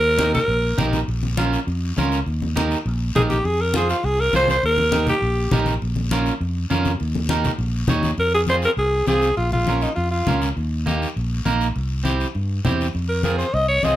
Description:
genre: latin, cumbia.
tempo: 202 BPM.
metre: 4/4.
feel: straight.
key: unclear.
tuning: A4 = 440 Hz.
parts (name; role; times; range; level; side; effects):
breathy alto saxophone; melody; 0.0-0.9, 3.2-5.6, 8.2-10.4, 13.1-14.0 s; Eb4 to Eb5; -20 LUFS; equal; plate reverb.
fingered electric bass; bass; 0.0-14.0 s; Bb1 to G2; -23 LUFS; equal; none.
electric guitar at the edge of break-up; accompaniment; 0.2-14.0 s; Bb3 to Db5; -24 LUFS; right 4 dB; none.
congas; percussion; 0.2-14.0 s; none; -26 LUFS; left 2 dB; none.
guiro; percussion; 0.2-14.0 s; none; -34 LUFS; left 5 dB; none.
room: moderate studio ambience, RT60 0.5 s.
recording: none.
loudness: -18 LUFS.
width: side -13 dB against mid.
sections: 0.0-8.2 A section; 8.2-14.0 B section.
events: none.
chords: 0.0 Eb; 1.1 Bbm; 2.3 Eb; 3.5 Fm; 4.6 Eb; 5.8 Bbm; 7.0 Eb; 8.2 Fm; 9.4 Bbm; 10.6 Eb; 11.8 C; 12.9 Fm.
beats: 0.19 0.49 0.79 | 1.08 1.38 1.68 1.97 | 2.27 2.57 2.86 3.16 | 3.46 3.75 4.05 4.34 | 4.64 4.93 5.23 5.53 | 5.82 6.12 6.41 6.71 | 7.00 7.30 7.60 7.89 | 8.19 8.48 8.78 9.08 | 9.38 9.67 9.97 10.27 | 10.57 10.86 11.16 11.46 | 11.76 12.06 12.35 12.65 | 12.95 13.25 13.54 13.84.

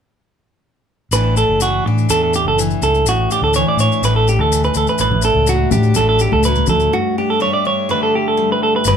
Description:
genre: highlife guitar band.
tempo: 124 BPM.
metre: 4/4.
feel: straight.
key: A mixolydian.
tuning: A4 = 440 Hz.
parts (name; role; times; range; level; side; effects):
picked steel-string acoustic guitar; accompaniment; 1.1-9.0 s; G2 to A4; -20 LUFS; left 6 dB; none.
clean electric guitar; arpeggios; 1.1-9.0 s; F#4 to D5; -16 LUFS; right 3 dB; none.
fingered electric bass; bass; 1.1-9.0 s; F#1 to A2; -18 LUFS; equal; none.
maracas; percussion; 1.1-9.0 s; none; -25 LUFS; left 8 dB; none.
congas; percussion; 5.1-6.8 s; none; -21 LUFS; equal; none.
room: wet small room reverb, RT60 0.6 s.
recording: band playing live in one room.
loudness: -13 LUFS.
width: side -7 dB against mid.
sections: 1.1-8.9 A section.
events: break 6.9-8.9.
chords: 1.1 Asus4; 5.0 D/A; 6.9 Gadd9.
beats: | 1.13 1.61 2.09 2.58 | 3.06 3.55 4.03 4.51 | 5.00 5.48 5.97 6.45 | 6.93 7.42 7.90 8.38 | 8.87.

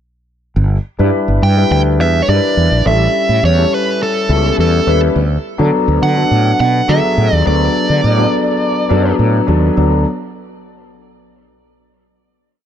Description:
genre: polished 1980s jazz-funk pop.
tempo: 104 BPM.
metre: 4/4.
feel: straight.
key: D major.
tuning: A4 = 442 Hz.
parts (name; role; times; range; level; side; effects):
fretless electric bass; bass; 0.6-10.0 s; G1 to D3; -13 LUFS; right 1 dB; wide subtle chorus.
warm concert grand piano; accompaniment; 1.0-10.0 s; F#3 to B4; -16 LUFS; left 3 dB; wide subtle chorus.
dark smooth lead guitar; melody; 1.4-9.2 s; A4 to G5; -17 LUFS; right 2 dB; overdrive.
room: light reverb, small room ambience.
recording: dark, warm production.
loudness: -11 LUFS.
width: side -9 dB against mid.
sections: 0.6-9.8 verse; 9.8-12.1 final chord.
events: none.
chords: 0.6 G6; 2.9 A7; 5.2 D6.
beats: | 0.56 1.14 1.71 2.29 | 2.86 3.43 4.01 4.58 | 5.16 5.73 6.31 6.88 | 7.46 8.04 8.61 9.19 | 9.77.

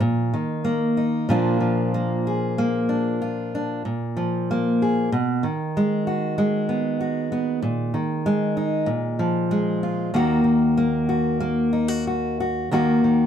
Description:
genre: folk, solo fingerstyle acoustic guitar.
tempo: 95 BPM.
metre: 4/4.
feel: straight.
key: unclear.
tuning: A4 = 440 Hz.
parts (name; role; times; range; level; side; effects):
fingerpicked steel-string acoustic guitar; solo; 0.0-13.3 s; Eb2 to Ab4; -20 LUFS; equal; none.
room: light reverb.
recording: dark, warm production.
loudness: -20 LUFS.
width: side -8 dB against mid.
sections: 0.0-12.7 A section.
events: none.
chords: 0.0 Bbsus4; 1.3 Bb; 5.1 Abm7/Cb; 7.6 Bb7sus4; 8.9 Bb5; 10.1 Ebm.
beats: | 0.00 0.64 1.27 1.92 | 2.56 3.21 3.85 4.48 | 5.12 5.75 6.38 7.00 | 7.63 8.25 8.88 9.51 | 10.14 10.77 11.42 12.07 | 12.73.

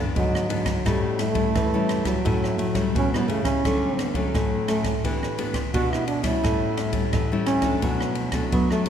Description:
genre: samba and choro.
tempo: 86 BPM.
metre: 4/4.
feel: straight.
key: unclear.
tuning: A4 = 436 Hz.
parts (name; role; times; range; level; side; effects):
breathy trombone; melody; 0.0-8.9 s; F#3 to F#4; -26 LUFS; right 2 dB; none.
nylon-string guitar; accompaniment; 0.0-8.9 s; F#2 to G4; -28 LUFS; left 3 dB; none.
nylon-string guitar; bass; 0.0-8.9 s; G#2 to F#3; -27 LUFS; equal; none.
open jazz drum kit; drums; 0.2-8.9 s; kick drum, ride cymbal, rim click; -27 LUFS; equal; none.
room: wet cathedral reverb, RT60 5.0 s.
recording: recorded in a church or concert hall.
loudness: -21 LUFS.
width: side -8 dB against mid.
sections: 0.0-8.9 A section.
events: none.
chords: 0.0 G6; 0.9 A7; 3.6 Dmaj7; 5.0 Em7; 6.4 A7; 7.8 Bm7.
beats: 0.16 | 0.86 1.56 2.25 2.95 | 3.65 4.35 5.04 5.74 | 6.44 7.14 7.83 8.53.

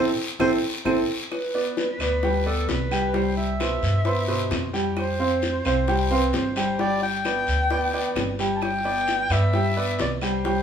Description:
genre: latin, Cuban son and guajira.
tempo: 131 BPM.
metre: 4/4.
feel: straight.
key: unclear.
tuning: A4 = 440 Hz.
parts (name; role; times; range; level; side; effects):
mellow clarinet; melody; 0.0-10.6 s; A4 to A5; -27 LUFS; equal; none.
clear grand piano; arpeggios; 0.0-10.6 s; B2 to G5; -25 LUFS; right 1 dB; none.
upright bass; bass; 0.0-10.6 s; G1 to G2; -27 LUFS; equal; none.
bongos; percussion; 0.4-10.6 s; none; -32 LUFS; left 3 dB; none.
claves; percussion; 0.4-10.4 s; none; -38 LUFS; right 3 dB; none.
guiro; percussion; 0.4-10.6 s; none; -34 LUFS; left 3 dB; none.
room: wet large studio reverb, RT60 1.0 s.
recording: band playing live in one room.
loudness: -21 LUFS.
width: side -8 dB against mid.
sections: 0.0-1.3 A section; 1.3-10.6 B section.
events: band accent 0.0-1.3.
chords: 0.0 Am; 1.3 G; 3.1 Cmaj7; 5.0 Fsus2; 6.8 G; 8.6 G6.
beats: 0.40 0.86 | 1.31 1.77 2.23 2.68 | 3.14 3.60 4.06 4.51 | 4.97 5.43 5.88 6.34 | 6.80 7.25 7.71 8.17 | 8.62 9.08 9.54 9.99 | 10.45.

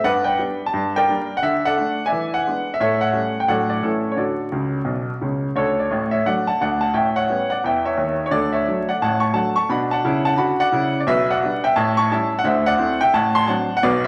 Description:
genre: jazz, stride piano.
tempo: 174 BPM.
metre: 4/4.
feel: swing 61% on 8ths.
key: D major.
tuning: A4 = 440 Hz.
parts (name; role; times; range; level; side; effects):
clear grand piano; solo; 0.0-14.1 s; A1 to C#6; -20 LUFS; equal; none.
room: wet large studio reverb, RT60 1.4 s.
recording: vinyl crackle.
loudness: -20 LUFS.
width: mono.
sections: 0.0-5.6 A section; 5.6-14.1 B section.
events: grand piano fill 4.5-5.6.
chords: 0.0 G; 0.7 Gm; 1.4 D; 2.1 E7; 2.8 A7; 3.5 D/A; 3.8 A; 4.2 D; 6.9 A13; 8.3 D; 9.7 Bm; 11.1 G/B; 11.8 A7; 12.5 D9; 13.1 D7/A.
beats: | 0.05 0.39 0.74 1.08 | 1.43 1.77 2.12 2.46 | 2.81 3.15 3.49 3.84 | 4.18 4.53 4.87 5.22 | 5.56 5.91 6.25 6.59 | 6.94 7.28 7.63 7.97 | 8.32 8.66 9.01 9.35 | 9.70 10.04 10.39 10.73 | 11.08 11.42 11.77 12.11 | 12.46 12.80 13.15 13.49 | 13.84.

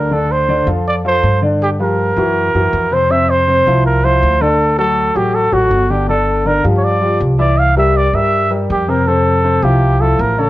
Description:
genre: Afro-Cuban jazz.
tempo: 161 BPM.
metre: 4/4.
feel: straight.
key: D minor.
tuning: A4 = 444 Hz.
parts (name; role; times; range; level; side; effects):
breathy trumpet; melody; 0.0-10.5 s; F#4 to F5; -15 LUFS; right 1 dB; none.
warm concert grand piano; accompaniment; 0.0-10.5 s; B#2 to E5; -17 LUFS; left 2 dB; none.
upright bass; bass; 0.0-10.5 s; G1 to G2; -17 LUFS; equal; none.
room: moderate club reverb, RT60 0.5 s.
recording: worn, warbling old tape, cassette tape, warbly pitch drift.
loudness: -11 LUFS.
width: side -16 dB against mid.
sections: 0.1-10.5 A section.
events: none.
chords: 0.1 Dm7; 1.6 Gm7; 2.4 F#7#11; 3.1 F5; 4.6 D; 6.1 G5; 7.6 C7; 9.1 Fmaj7.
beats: | 0.12 0.49 0.86 1.24 | 1.61 1.99 2.36 2.73 | 3.10 3.48 3.85 4.22 | 4.60 4.97 5.34 5.72 | 6.09 6.46 6.83 7.21 | 7.58 7.95 8.32 8.70 | 9.07 9.44 9.81 10.19.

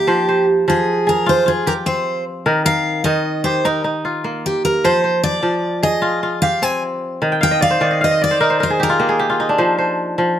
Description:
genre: west african traditional.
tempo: 101 BPM (dotted quarters).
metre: 12/8.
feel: straight.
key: F dorian.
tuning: A4 = 440 Hz.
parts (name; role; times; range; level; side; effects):
picked steel-string acoustic guitar; melody; 0.0-9.2 s; G4 to Ab5; -17 LUFS; right 1 dB; plate reverb.
kora; arpeggios; 0.0-10.4 s; Eb3 to G5; -17 LUFS; equal; none.
room: light reverb.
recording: none.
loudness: -15 LUFS.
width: side -10 dB against mid.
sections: 0.0-10.4 A section.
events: steel-string acoustic guitar solo 0.0-10.4; kora fill 7.3-9.6.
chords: 0.1 Fm; 2.5 Eb; 4.8 Fm; 7.2 Eb5; 9.6 Fm.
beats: | 0.09 0.68 1.28 1.87 | 2.47 3.06 3.65 4.25 | 4.84 5.44 6.03 6.62 | 7.22 7.81 8.40 9.00 | 9.59 10.18.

